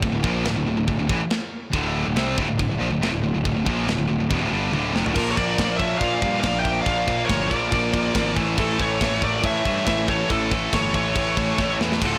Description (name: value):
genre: heavy metal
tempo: 140 BPM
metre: 4/4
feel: straight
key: D harmonic minor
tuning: A4 = 442 Hz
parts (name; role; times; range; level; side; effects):
- distorted electric guitar; riff; 0.0-12.2 s; D2 to C4; -31 LUFS; equal; overdrive
- high-gain distorted guitar; riff; 0.0-12.2 s; D2 to C4; -30 LUFS; equal; distortion
- sludgy distorted guitar; riff; 0.0-12.2 s; D2 to C4; -32 LUFS; equal; none
- fuzz picked electric bass; bass; 0.0-12.2 s; D1 to Bb2; -30 LUFS; equal; overdrive
- tight metal drum kit; drums; 0.0-12.1 s; china cymbal, crash cymbal, kick drum, snare drum, toms; -29 LUFS; equal; soft clipping on kick
- high-gain lead guitar; melody; 5.1-12.2 s; A4 to G5; -27 LUFS; equal; distortion, tape echo
- high-gain lead guitar; second line; 5.2-12.2 s; E4 to E5; -35 LUFS; equal; distortion
room: light reverb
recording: blown-out, overdriven recording, overdrive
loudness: -22 LUFS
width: mono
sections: 0.0-5.2 A section; 5.2-12.2 B section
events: drum fill 4.7-5.2, 11.6-12.0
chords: 0.0 Dm; 5.2 Bb; 8.4 A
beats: | 0.03 0.46 0.89 1.32 | 1.74 2.17 2.60 3.02 | 3.45 3.88 4.30 4.73 | 5.16 5.59 6.01 6.44 | 6.87 7.29 7.72 8.15 | 8.58 9.01 9.44 9.87 | 10.29 10.72 11.15 11.58 | 12.01